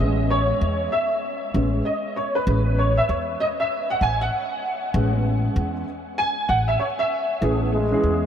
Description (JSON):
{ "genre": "hip hop, jazz-hop", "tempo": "97 BPM", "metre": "4/4", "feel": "swing 62% on 16ths", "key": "A lydian", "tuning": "A4 = 443 Hz", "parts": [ { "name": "dark grand piano", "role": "accompaniment", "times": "0.0-8.3 s", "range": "E3 to G#5", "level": "-22 LUFS", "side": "right 1 dB", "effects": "ensemble chorus" }, { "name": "upright bass", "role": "bass", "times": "0.0-8.3 s", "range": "A1 to E2", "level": "-22 LUFS", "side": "left 1 dB", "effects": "none" }, { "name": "growling trombone", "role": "melody", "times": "7.7-8.3 s", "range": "G#3", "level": "-23 LUFS", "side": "left 1 dB", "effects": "none" } ], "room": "moderate huge ambient reverb, RT60 8.3 s", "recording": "dreamy mix soaked in reverb", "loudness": "-20 LUFS", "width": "side -9 dB against mid", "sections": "0.0-7.4 A section", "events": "grand piano solo 0.0-7.4", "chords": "0.0 Amaj9", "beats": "0.61 1.23 1.85 | 2.46 3.08 3.70 4.32 | 4.94 5.56 6.18 6.79 | 7.41 8.03" }